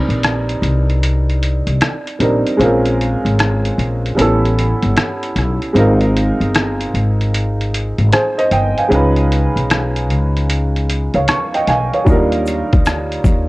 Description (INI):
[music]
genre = lo-fi hip hop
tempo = 76 BPM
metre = 4/4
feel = swing 65% on 16ths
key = unclear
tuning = A4 = 440 Hz
[part]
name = warm upright piano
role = accompaniment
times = 0.0-13.5 s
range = F#3 to Db6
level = -17 LUFS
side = right 1 dB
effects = cassette tape, low-pass filter
[part]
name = upright bass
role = bass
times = 0.1-13.5 s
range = G1 to Eb2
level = -16 LUFS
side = equal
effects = transformer saturation
[part]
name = lo-fi sampler-style drum kit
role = drums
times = 0.1-13.5 s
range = hi-hat, kick drum, rim click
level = -18 LUFS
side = equal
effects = none
[part]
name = egg shaker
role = percussion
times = 12.1-13.5 s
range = none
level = -41 LUFS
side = left 2 dB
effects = none
[sound]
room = light reverb, small room ambience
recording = worn, warbling old tape, cassette tape, warbly pitch drift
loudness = -13 LUFS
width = side -21 dB against mid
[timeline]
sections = 0.0-13.5 A section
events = break 0.0-12.1; upright piano fill 10.9-12.1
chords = 0.0 Cm7; 2.6 Bbm9; 4.2 A9; 5.7 Ab69; 8.9 Db9; 12.1 Ebmaj9